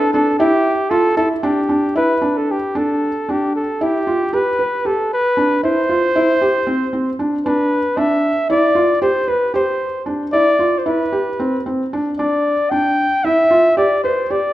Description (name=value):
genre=contemporary instrumental, contemporary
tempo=228 BPM (eighths)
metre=9/8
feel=straight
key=unclear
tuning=A4 = 438 Hz
part: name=warm flugelhorn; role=melody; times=0.0-14.5 s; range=G4 to G5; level=-17 LUFS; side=left 1 dB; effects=none
part: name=felt-muted upright piano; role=arpeggios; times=0.0-14.5 s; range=C4 to B4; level=-18 LUFS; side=right 1 dB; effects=none
room=wet recital hall reverb, RT60 1.7 s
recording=none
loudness=-14 LUFS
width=side -14 dB against mid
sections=0.0-2.8 A section; 2.8-14.5 B section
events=none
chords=0.4 Emadd11; 1.4 G5; 2.8 Em7 (rootless); 5.1 Cmaj9; 7.5 Em7; 9.8 Cmaj9; 12.2 Em7